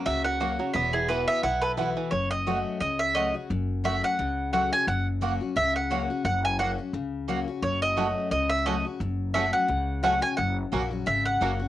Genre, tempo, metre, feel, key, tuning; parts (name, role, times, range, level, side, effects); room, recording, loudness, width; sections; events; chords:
bluegrass; 174 BPM; 4/4; swing 55% on 8ths; A4 = 440 Hz
picked steel-string acoustic guitar; accompaniment; 0.0-11.7 s; E2 to F#4; -31 LUFS; left 6 dB; cassette tape
bluegrass banjo; arpeggios; 0.0-2.1, 8.0-11.5 s; E3 to A4; -32 LUFS; right 6 dB; cassette tape
mandolin; melody; 0.1-11.7 s; G#4 to G#5; -26 LUFS; right 1 dB
upright bass; bass; 0.1-11.7 s; E1 to C#2; -31 LUFS; equal
mandolin; stabs; 0.4-11.5 s; A3 to F#5; -33 LUFS; right 5 dB; cassette tape
moderate studio reverb, RT60 0.6 s; home recording on cassette; -24 LUFS; side -13 dB against mid
0.0-2.1 A section; 2.1-11.7 A section
0.0 F#; 0.8 Esus2; 2.1 F#m; 4.9 F#; 7.6 F#m; 10.4 F#